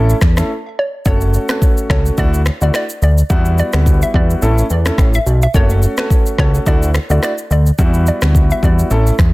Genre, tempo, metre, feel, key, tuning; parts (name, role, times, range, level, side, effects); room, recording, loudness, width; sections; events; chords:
afrobeats; 107 BPM; 4/4; swing 55% on 16ths; D major; A4 = 444 Hz
warm grand piano; accompaniment; 0.0-9.1 s; G3 to A4; -20 LUFS; equal
fat analog bass; bass; 0.0-9.3 s; F#1 to E2; -13 LUFS; equal
afro-pop drum kit; drums; 0.1-9.3 s; finger snaps, kick drum, rim click, shaker; -15 LUFS; equal; soft clipping on snare
hollow square pluck; melody; 0.8-8.8 s; B4 to E5; -23 LUFS; equal; chorus, digital delay
digital ambience; dense, heavily limited modern master; -11 LUFS; side -21 dB against mid
0.0-9.3 A section
break 0.5-1.1
0.0 A; 1.1 F#m; 2.2 Dadd9; 3.3 Emadd9; 4.4 A; 5.5 F#m; 6.7 Dadd9; 7.8 Emadd9